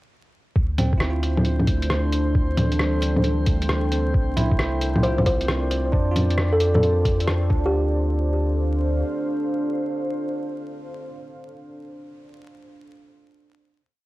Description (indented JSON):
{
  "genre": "future garage",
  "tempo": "134 BPM",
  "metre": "4/4",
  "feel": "swing 66% on 16ths",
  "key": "D minor",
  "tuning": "A4 = 441 Hz",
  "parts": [
    { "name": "deep dark ambient pad", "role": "sustained chords", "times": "1.6-11.5 s", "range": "C4 to A5", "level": "-28 LUFS", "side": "equal", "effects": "chorus, built-in reverb, sidechain pumping" },
    { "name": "warm sub bass", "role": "bass", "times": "0.6-9.0 s", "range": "C2 to F2", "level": "-23 LUFS", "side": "equal", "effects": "tube saturation" },
    { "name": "electronic kick drum", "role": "drums", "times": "0.6-7.6 s", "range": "none", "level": "-21 LUFS", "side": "equal", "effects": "cassette tape" },
    { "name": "drifting glass-harmonics texture", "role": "texture", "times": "1.1-7.7 s", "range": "C4 to C5", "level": "-35 LUFS", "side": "left 2 dB", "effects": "chorus, built-in reverb" },
    { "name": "bell-like tine electric piano", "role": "accompaniment", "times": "0.8-13.8 s", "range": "E3 to F4", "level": "-31 LUFS", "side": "right 3 dB", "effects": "vintage 12-bit sampler grit, sidechain pumping, analog delay" },
    { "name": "lo-fi sampler-style drum kit", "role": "drums", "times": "0.8-7.4 s", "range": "bongos, hi-hat, rim click", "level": "-24 LUFS", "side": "equal", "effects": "cassette tape" },
    { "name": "kalimba", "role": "melody", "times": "5.0-7.7 s", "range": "G4 to C5", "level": "-26 LUFS", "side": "equal", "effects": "vintage 12-bit sampler grit, cassette tape, analog delay" }
  ],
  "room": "light reverb",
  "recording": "home recording on cassette, vinyl crackle",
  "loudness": "-19 LUFS",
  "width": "side -18 dB against mid",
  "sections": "0.6-7.7 groove; 7.7-11.3 final chord",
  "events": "none",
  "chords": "0.6 Dm7; 4.1 C9sus4; 5.9 F6; 7.5 D5; 7.7 Dm7"
}